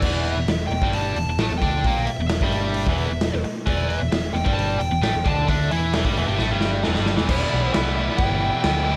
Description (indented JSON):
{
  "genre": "garage rock duo or trio",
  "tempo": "132 BPM",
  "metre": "4/4",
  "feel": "straight",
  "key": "E minor",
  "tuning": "A4 = 440 Hz",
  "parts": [
    { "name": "fuzz lead guitar", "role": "melody", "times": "0.0-9.0 s", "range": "D5 to A5", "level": "-30 LUFS", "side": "equal", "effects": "distortion" },
    { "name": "biting overdriven guitar", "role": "riff", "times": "0.0-9.0 s", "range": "E2 to E4", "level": "-27 LUFS", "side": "equal", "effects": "none" },
    { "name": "hollow-body short-scale picked electric bass", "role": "bass", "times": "0.0-9.0 s", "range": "E1 to E2", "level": "-28 LUFS", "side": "equal", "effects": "none" },
    { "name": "raw garage drum kit", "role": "drums", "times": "0.0-8.7 s", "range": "crash cymbal, hi-hat, kick drum, snare drum", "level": "-26 LUFS", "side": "equal", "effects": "none" }
  ],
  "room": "light reverb, small room ambience",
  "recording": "none",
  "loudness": "-22 LUFS",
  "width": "mono",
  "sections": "0.0-7.3 A section; 7.3-9.0 B section",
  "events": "drum fill 6.4-7.3",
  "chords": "0.0 Em",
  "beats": "| 0.04 0.49 0.95 1.40 | 1.86 2.31 2.77 3.22 | 3.67 4.13 4.58 5.03 | 5.49 5.94 6.39 6.84 | 7.29 7.74 8.19 8.64"
}